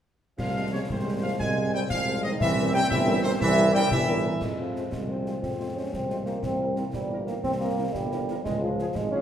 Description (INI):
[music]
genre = military-style march for wind band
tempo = 119 BPM (dotted quarters)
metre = 6/8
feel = straight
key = F minor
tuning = A4 = 441 Hz
[part]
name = clear trumpet section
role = melody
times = 0.4-9.2 s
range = Ab4 to Ab5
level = -31 LUFS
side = equal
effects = none
[part]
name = bright large flute ensemble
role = second line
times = 0.4-4.4 s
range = C5 to Ab5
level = -30 LUFS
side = equal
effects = none
[part]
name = warm euphonium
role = second line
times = 0.4-9.2 s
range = C3 to Db4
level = -29 LUFS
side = right 1 dB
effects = none
[part]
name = warm tuba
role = bass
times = 0.4-9.2 s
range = G1 to F2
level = -29 LUFS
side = equal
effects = none
[part]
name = concert snare drum, clash cymbals and concert bass drum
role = drums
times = 0.4-9.1 s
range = none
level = -34 LUFS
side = left 1 dB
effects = none
[part]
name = mellow French horn section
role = accompaniment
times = 0.6-9.2 s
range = F3 to C5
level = -36 LUFS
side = left 3 dB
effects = none
[part]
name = warm trombone section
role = sustained chords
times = 0.9-9.2 s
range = E3 to E4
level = -35 LUFS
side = right 3 dB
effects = none
[sound]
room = wet recital hall reverb, RT60 1.6 s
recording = recorded in a church or concert hall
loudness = -24 LUFS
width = side -9 dB against mid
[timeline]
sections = 0.4-4.4 A section; 4.4-9.2 B section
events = none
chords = 0.4 Fm/C; 2.4 C7b9; 4.4 Fm; 6.4 C7; 8.4 Db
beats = | 0.39 0.89 | 1.40 1.90 | 2.40 2.91 | 3.41 3.91 | 4.42 4.92 | 5.42 5.93 | 6.43 6.94 | 7.44 7.95 | 8.45 8.95